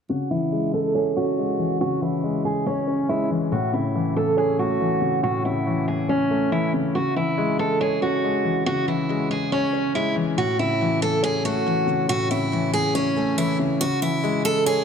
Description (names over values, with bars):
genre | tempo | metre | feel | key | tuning
hip hop | 140 BPM | 4/4 | half-time | C# minor | A4 = 440 Hz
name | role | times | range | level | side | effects
picked steel-string acoustic guitar | melody | 0.1-14.8 s | C#4 to A4 | -23 LUFS | right 2 dB | low-pass filter, digital delay
dark grand piano | accompaniment | 0.1-14.8 s | A2 to C#5 | -23 LUFS | left 2 dB | low-pass filter
room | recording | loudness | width
moderate lush hall reverb, RT60 2.5 s | none | -20 LUFS | side -7 dB against mid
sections
0.1-13.8 A section; 13.8-14.8 B section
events
filter sweep 0.1-13.8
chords
0.1 C#m; 3.5 A; 7.0 C#m; 10.4 A; 13.8 C#m